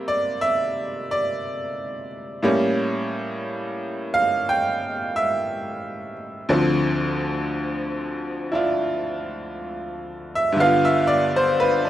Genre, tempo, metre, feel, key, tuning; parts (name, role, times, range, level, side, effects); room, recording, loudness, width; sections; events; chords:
solo jazz; 59 BPM; 4/4; swing 68% on 8ths; A4 = 440 Hz
tack piano; solo; 0.0-11.9 s; D2 to G5; -21 LUFS; equal
moderate club reverb, RT60 0.7 s; -20 LUFS; side -12 dB against mid
0.0-11.9 A section
honky-tonk piano solo 0.0-11.9
0.0 C7; 2.4 A7b9; 6.5 Dm7; 10.6 G7